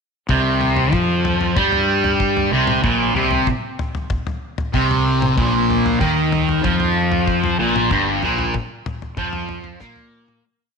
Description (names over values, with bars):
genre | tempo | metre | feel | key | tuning
psychedelic rock | 94 BPM | 4/4 | straight | C minor | A4 = 440 Hz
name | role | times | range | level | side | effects
fuzz guitar | riff | 0.3-10.4 s | G2 to Bb3 | -17 LUFS | equal | distortion, phaser
fuzz fingered electric bass | bass | 0.3-10.4 s | G1 to Bb2 | -24 LUFS | equal | overdrive
damped 70s drum kit | drums | 0.3-10.4 s | kick drum, snare drum, toms | -25 LUFS | left 2 dB | none
room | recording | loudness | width
moderate echo chamber reverb, RT60 2.1 s | 1960s-style stereo | -16 LUFS | side -5 dB against mid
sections
0.3-10.4 groove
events
fade-out 7.9-10.4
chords
0.3 C5; 5.4 Bb5